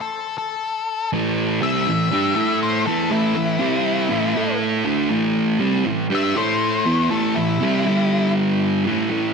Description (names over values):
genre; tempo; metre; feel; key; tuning
rock; 120 BPM; 4/4; straight; unclear; A4 = 440 Hz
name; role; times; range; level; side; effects
octave-fuzz lead guitar; melody; 0.0-8.3 s; E4 to E5; -24 LUFS; left 6 dB; distortion
thick fuzz guitar; riff; 1.1-9.3 s; G2 to A4; -18 LUFS; right 2 dB; distortion
room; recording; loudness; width
wet echo chamber reverb, RT60 2.1 s; none; -18 LUFS; side -5 dB against mid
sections
0.0-1.1 A section; 1.1-9.1 B section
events
none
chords
0.0 A5; 3.6 C5; 4.1 A5; 7.8 G5; 8.9 A5